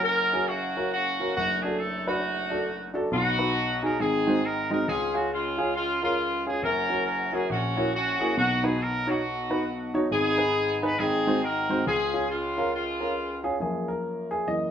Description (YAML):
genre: gospel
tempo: 137 BPM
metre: 4/4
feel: swing 62% on 8ths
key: F# major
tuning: A4 = 440 Hz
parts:
  - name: clear horn section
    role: melody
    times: 0.0-13.6 s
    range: G#3 to B4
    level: -26 LUFS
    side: equal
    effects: none
  - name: warm upright piano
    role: accompaniment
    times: 0.0-14.7 s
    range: F#1 to D#5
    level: -27 LUFS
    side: equal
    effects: none
room: wet studio reverb, RT60 0.6 s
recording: band playing live in one room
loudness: -24 LUFS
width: side -9 dB against mid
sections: 0.0-13.6 A section; 13.6-14.7 B section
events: upright piano solo 13.6-14.7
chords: 0.0 F#; 1.4 D/F#; 3.1 B; 4.0 G#7; 4.9 C#; 6.6 F#; 7.5 F#7/A#; 8.4 B; 10.1 G#m; 11.0 G#7; 11.9 C#; 13.6 F#maj7